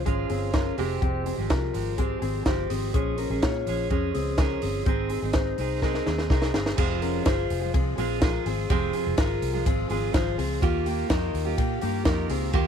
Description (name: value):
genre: jangly indie pop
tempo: 125 BPM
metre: 4/4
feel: straight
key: F minor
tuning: A4 = 437 Hz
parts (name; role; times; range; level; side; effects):
- fingerpicked steel-string acoustic guitar; accompaniment; 0.0-12.7 s; F2 to Ab4; -30 LUFS; right 15 dB; none
- mellow electric guitar; arpeggios; 0.0-12.7 s; Bb3 to Db5; -30 LUFS; left 15 dB; none
- vintage muted fingered electric bass; bass; 0.0-12.7 s; F1 to Bb2; -30 LUFS; equal; none
- compact cocktail drum kit; drums; 0.1-12.6 s; crash cymbal, hi-hat, kick drum, ride cymbal, snare drum; -27 LUFS; equal; none
room: studio ambience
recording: 1960s-style stereo with parts hard left and right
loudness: -23 LUFS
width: side -8 dB against mid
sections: 0.0-6.8 A section; 6.8-12.7 B section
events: drum fill 5.8-6.8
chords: 0.0 Db; 0.8 Fmadd9; 2.9 Bbm7; 4.9 Ab; 6.8 Fm; 10.6 Ebadd9